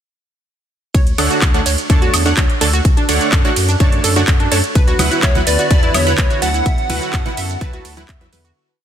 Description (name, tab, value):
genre	progressive house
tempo	126 BPM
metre	4/4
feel	straight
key	D major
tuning	A4 = 440 Hz
part	analog pluck	arpeggios	0.9-8.5 s	D4 to E5	-23 LUFS	right 1 dB	chorus, cassette tape, sidechain pumping, digital delay
part	saturated sub bass	bass	0.9-8.5 s	D2 to F#2	-20 LUFS	equal	tube saturation, sidechain pumping
part	electronic kick drum	drums	0.9-8.2 s	none	-14 LUFS	equal	none
part	house drum kit	drums	0.9-8.5 s	handclaps, hi-hat, ride cymbal, shaker, woodblock	-20 LUFS	right 2 dB	sidechain pumping on hats, sidechain pumping on cymbals, sidechain pumping on perc
part	supersaw stab	stabs	1.2-8.3 s	D3 to A5	-20 LUFS	right 2 dB	sidechain pumping, digital delay
part	lush unison pad	sustained chords	4.8-8.5 s	D3 to B4	-26 LUFS	right 1 dB	chorus, sidechain pumping
part	congas	percussion	5.0-8.4 s	none	-26 LUFS	right 2 dB	sidechain pumping on perc
part	plucky unison lead	melody	5.2-8.1 s	C#5 to F#5	-20 LUFS	equal	dub echo
room	light reverb, digital ambience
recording	dense, heavily limited modern master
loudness	-12 LUFS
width	side -9 dB against mid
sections	0.9-8.6 drop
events	drop 0.9-8.6; fade-out 6.0-8.6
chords	0.9 Dmaj7; 4.8 Esus2/D